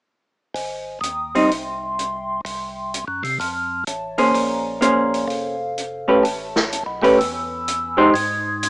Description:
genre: soul jazz organ trio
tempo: 126 BPM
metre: 4/4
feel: swing 67% on 8ths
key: Ab major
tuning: A4 = 440 Hz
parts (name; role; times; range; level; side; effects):
- tonewheel organ; bass; 0.5-8.7 s; F1 to C3; -24 LUFS; equal; slow rotary speaker
- vintage drum kit; drums; 0.6-8.7 s; hi-hat, snare drum; -27 LUFS; equal; none
- vintage hollow-body jazz guitar; accompaniment; 1.3-8.1 s; G3 to C5; -16 LUFS; equal; none
room: light reverb, small room ambience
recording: rough home demo mix, small speaker sound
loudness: -18 LUFS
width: side -25 dB against mid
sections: 0.6-8.1 A section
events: none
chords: 0.6 Ab; 2.5 N.C.; 3.4 F; 4.3 Bbm9; 6.2 A7sus2; 8.1 N.C.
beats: | 0.55 1.03 1.50 1.98 | 2.45 2.93 3.40 3.88 | 4.35 4.82 5.30 5.77 | 6.25 6.72 7.20 7.67 | 8.14 8.62

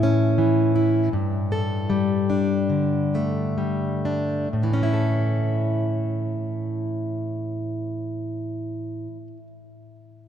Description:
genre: folk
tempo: 61-84 BPM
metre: 4/4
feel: straight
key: A major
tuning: A4 = 440 Hz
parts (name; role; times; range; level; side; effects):
- fingerpicked plugged-in steel-string acoustic guitar; accompaniment; 0.0-9.5 s; G2 to A4; -22 LUFS; equal; none
room: wet cathedral reverb, RT60 5.0 s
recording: recorded in a church or concert hall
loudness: -21 LUFS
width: side -9 dB against mid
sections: 0.0-4.5 A section; 4.5-8.5 B section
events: slowing down 0.0-4.5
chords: 0.0 A; 1.1 Gsus2; 4.5 A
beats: 0.38 | 1.12 1.90 2.71 3.59 | 4.53 5.52 6.50 7.48

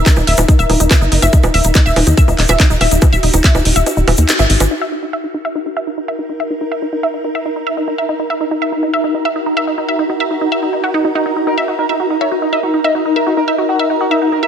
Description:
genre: psychedelic trance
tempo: 142 BPM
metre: 4/4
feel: straight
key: Eb phrygian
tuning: A4 = 445 Hz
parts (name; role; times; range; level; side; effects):
- swarming drone; sustained chords; 0.0-14.5 s; Eb4 to Bb4; -20 LUFS; equal; built-in reverb, sidechain pumping
- tight sequencer bass; bass; 0.0-4.7 s; Eb1 to Eb2; -14 LUFS; equal; tube saturation
- wide unison pluck; riff; 0.1-14.5 s; Eb4 to Fb5; -18 LUFS; equal; auto-pan, sidechain pumping, tape echo
- electronic kick drum; drums; 0.1-3.5 s; none; -10 LUFS; equal; none
- garage drum kit; drums; 0.1-4.7 s; bongos, handclaps, hi-hat; -17 LUFS; right 2 dB; low-pass filter on hats, low-pass filter on snare, low-pass filter on perc, low-pass filter on room
- egg shaker; percussion; 0.1-4.7 s; none; -24 LUFS; left 5 dB; none
- ethereal airy pad; texture; 6.2-14.5 s; Eb4 to Bb5; -23 LUFS; right 2 dB; ensemble chorus, built-in reverb, sidechain pumping
- overdriven synth lead; melody; 11.5-14.5 s; Eb4 to Eb5; -17 LUFS; left 1 dB; chorus, phaser, sidechain pumping, tape echo
room: light reverb, digital ambience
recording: none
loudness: -12 LUFS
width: side -8 dB against mid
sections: 0.0-4.7 A section; 4.7-14.5 B section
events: kick drops out 3.9-4.7; band accent 4.3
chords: 0.0 Eb5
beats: 0.06 0.48 0.91 | 1.33 1.75 2.17 2.60 | 3.02 3.44 3.86 4.29 | 4.71 5.13 5.55 5.98 | 6.40 6.82 7.25 7.67 | 8.09 8.51 8.94 9.36 | 9.78 10.20 10.62 11.05 | 11.47 11.89 12.31 12.74 | 13.16 13.58 14.01 14.43

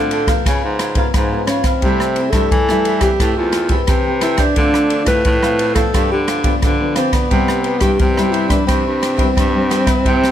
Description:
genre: samba and choro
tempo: 88 BPM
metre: 4/4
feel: straight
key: C major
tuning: A4 = 440 Hz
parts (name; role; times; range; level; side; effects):
- breathy alto saxophone; melody; 0.0-10.3 s; B3 to B4; -18 LUFS; equal; none
- cavaquinho; accompaniment; 0.0-10.3 s; D4 to G5; -23 LUFS; right 2 dB; none
- nylon-string guitar; accompaniment; 0.0-10.3 s; G2 to B4; -21 LUFS; left 2 dB; none
- warm baritone saxophone; bass; 0.0-10.3 s; E2 to E3; -20 LUFS; equal; none
- open jazz drum kit; drums; 0.1-10.3 s; kick drum, ride cymbal, rim click; -18 LUFS; equal; none
room: light reverb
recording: none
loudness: -13 LUFS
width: side -10 dB against mid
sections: 0.0-10.3 A section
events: none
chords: 0.5 Db6; 1.8 C6; 3.2 Am9; 4.6 Dm7; 5.9 G7; 7.3 Cmaj7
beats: 0.46 1.14 | 1.83 2.52 3.20 3.89 | 4.57 5.26 5.94 6.63 | 7.31 8.00 8.68 9.37 | 10.05

